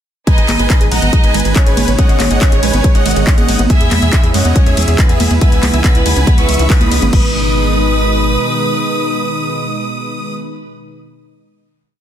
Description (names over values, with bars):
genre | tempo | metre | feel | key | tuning
uplifting trance | 140 BPM | 4/4 | straight | G# minor | A4 = 440 Hz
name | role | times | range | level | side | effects
big supersaw lead | melody | 0.3-10.3 s | G#4 to D#6 | -21 LUFS | equal | sidechain pumping, ping-pong delay
rich chamber violin section | second line | 0.3-10.3 s | B3 to E5 | -20 LUFS | right 1 dB | digital delay
lush unison pad | sustained chords | 0.3-10.3 s | B2 to E4 | -21 LUFS | equal | chorus, sidechain pumping
wide unison pluck | arpeggios | 0.3-7.3 s | G#3 to E5 | -22 LUFS | right 3 dB | sidechain pumping, digital delay
electronic kick drum | drums | 0.3-7.2 s | none | -11 LUFS | equal | none
house drum kit | drums | 0.3-7.2 s | congas, crash cymbal, handclaps, hi-hat, ride cymbal | -18 LUFS | equal | none
tight sequencer bass | bass | 0.4-8.4 s | G#1 to F#2 | -16 LUFS | equal | tube saturation, sidechain pumping
room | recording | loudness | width
little or no reverb | dense, heavily limited modern master | -10 LUFS | side -10 dB against mid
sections
0.3-7.1 drop; 7.1-10.6 final chord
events
drop 0.3-7.1; band accent 6.7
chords
0.3 G#m; 3.7 E; 5.4 C#madd9; 7.1 G#m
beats
| 0.27 0.70 1.13 1.56 | 1.99 2.41 2.84 3.27 | 3.70 4.13 4.56 4.99 | 5.41 5.84 6.27 6.70 | 7.13 7.56 7.99 8.41 | 8.84 9.27 9.70 10.13